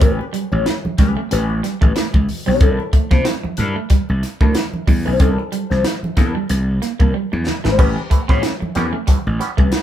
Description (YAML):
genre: funk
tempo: 93 BPM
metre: 4/4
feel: swing 56% on 16ths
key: A mixolydian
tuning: A4 = 440 Hz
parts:
  - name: mellow electric guitar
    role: accompaniment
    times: 0.0-9.8 s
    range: C#4 to C#5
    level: -23 LUFS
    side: left 6 dB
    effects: wah, spring reverb
  - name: electric guitar at the edge of break-up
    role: riff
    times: 0.0-9.7 s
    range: G3 to C#4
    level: -25 LUFS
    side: right 7 dB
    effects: none
  - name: gritty slap bass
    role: bass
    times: 0.0-9.7 s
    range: G#1 to C3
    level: -19 LUFS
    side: equal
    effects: overdrive
  - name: crisp fusion drum kit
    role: drums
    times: 0.0-9.8 s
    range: crash cymbal, hi-hat, kick drum, snare drum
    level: -16 LUFS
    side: equal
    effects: none
  - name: congas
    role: percussion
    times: 0.0-9.8 s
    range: none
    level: -28 LUFS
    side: right 2 dB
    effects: none
  - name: mellow clav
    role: stabs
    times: 7.8-9.8 s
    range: A2 to C#4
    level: -26 LUFS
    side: right 5 dB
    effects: auto-wah
room: light reverb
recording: band playing live in one room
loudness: -15 LUFS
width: side -11 dB against mid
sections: 0.0-9.8 A section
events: drum fill 7.1-7.8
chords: 0.0 A9; 2.6 C9; 7.8 A9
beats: | 0.02 0.66 1.31 1.96 | 2.61 3.26 3.91 4.55 | 5.20 5.85 6.50 7.14 | 7.79 8.44 9.08 9.72